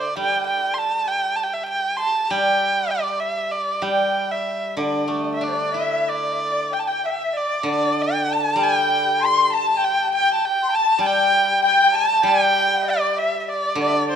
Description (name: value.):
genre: chinese traditional, Chinese chamber ensemble.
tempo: 98 BPM.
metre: 4/4.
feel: rubato.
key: D shang mode.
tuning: A4 = 442 Hz.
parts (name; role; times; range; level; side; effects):
warm erhu; melody; 0.0-14.2 s; C5 to C6; -20 LUFS; right 2 dB; none.
steel-string zither; accompaniment; 0.0-14.2 s; D3 to E4; -26 LUFS; right 1 dB; none.
dizi; second line; 5.4-14.2 s; C5 to C6; -22 LUFS; left 6 dB; none.
room: moderate recital hall reverb, RT60 1.6 s.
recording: none.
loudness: -18 LUFS.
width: side -8 dB against mid.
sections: 0.0-6.4 A section; 6.4-14.2 B section.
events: none.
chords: none.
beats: 0.18 0.79 | 1.40 2.01 2.62 3.23 | 3.84 4.46 5.09 5.74 | 6.39 7.03 7.65 8.28 | 8.89 9.50 10.10 10.71 | 11.31 11.93 12.54 13.16 | 13.78.